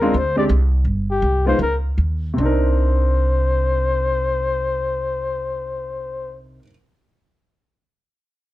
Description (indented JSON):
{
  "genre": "jazz, small-group swing and bop",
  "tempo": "148-173 BPM",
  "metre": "4/4",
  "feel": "swing 64% on 8ths",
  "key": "C minor",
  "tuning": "A4 = 440 Hz",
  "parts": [
    { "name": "breathy flugelhorn", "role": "melody", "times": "0.0-6.4 s", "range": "G4 to D5", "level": "-22 LUFS", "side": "left 3 dB", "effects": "none" },
    { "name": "warm baby grand piano", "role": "accompaniment", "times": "0.0-6.7 s", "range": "C3 to Bb4", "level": "-22 LUFS", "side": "right 1 dB", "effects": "none" },
    { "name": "upright bass", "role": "bass", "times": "0.0-6.6 s", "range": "G1 to Eb2", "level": "-20 LUFS", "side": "equal", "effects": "none" }
  ],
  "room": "little or no reverb",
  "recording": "dark, warm production",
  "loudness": "-17 LUFS",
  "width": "side -15 dB against mid",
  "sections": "0.0-2.4 A section; 2.4-5.6 B section",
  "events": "slowing down 0.0-2.4",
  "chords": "0.1 Csus2; 0.8 G7sus4; 1.6 Dbsus2; 2.4 Cm9"
}